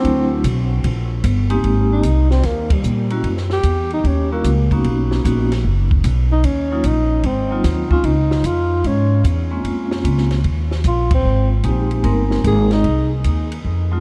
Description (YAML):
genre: jazz, small-group swing and bop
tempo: 150 BPM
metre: 4/4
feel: swing 67% on 8ths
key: Ab major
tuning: A4 = 440 Hz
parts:
  - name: breathy tenor saxophone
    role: melody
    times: 0.0-13.1 s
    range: G3 to Ab4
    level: -24 LUFS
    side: equal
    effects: analog delay
  - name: vibraphone with medium mallets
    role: accompaniment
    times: 0.0-14.0 s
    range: Gb3 to Bb4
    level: -26 LUFS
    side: equal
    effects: none
  - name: upright bass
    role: bass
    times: 0.0-14.0 s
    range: F#1 to Bb2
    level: -20 LUFS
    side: equal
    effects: none
  - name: compact cocktail drum kit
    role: drums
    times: 0.0-13.8 s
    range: hi-hat, kick drum, ride cymbal, snare drum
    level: -26 LUFS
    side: equal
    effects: none
room: light reverb, small room ambience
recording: none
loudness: -17 LUFS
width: mono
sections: 0.0-1.6 A section; 1.6-14.0 B section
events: tenor saxophone solo 0.0-1.6; band accent 2.6, 11.0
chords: 0.0 D9; 0.8 Eb; 1.6 Abmaj9; 3.2 Gb7b9; 4.8 Bmaj7; 6.4 Ebm9; 7.2 Ab13; 8.0 Dbadd9; 9.6 Bbm9; 10.4 Eb5; 11.2 Abmaj9; 12.8 Cm